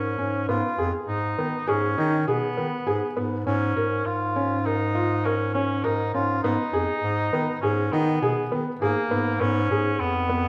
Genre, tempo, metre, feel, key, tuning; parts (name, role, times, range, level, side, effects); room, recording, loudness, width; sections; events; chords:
contemporary instrumental, chamber music in an uneven meter; 101 BPM; 5/4; straight; G# dorian; A4 = 440 Hz
mellow cor anglais; second line; 0.0-10.5 s; A#3 to E#4; -30 LUFS; equal
felt-muted upright piano; arpeggios; 0.0-10.5 s; B3 to A#4; -29 LUFS; equal
warm bass clarinet; bass; 0.0-10.5 s; E#2 to D#3; -30 LUFS; equal
wet recital hall reverb, RT60 1.3 s; -25 LUFS; mono
0.0-10.5 A section
0.5 G#m; 3.5 A#m/G#; 6.4 G#madd9; 9.4 G#m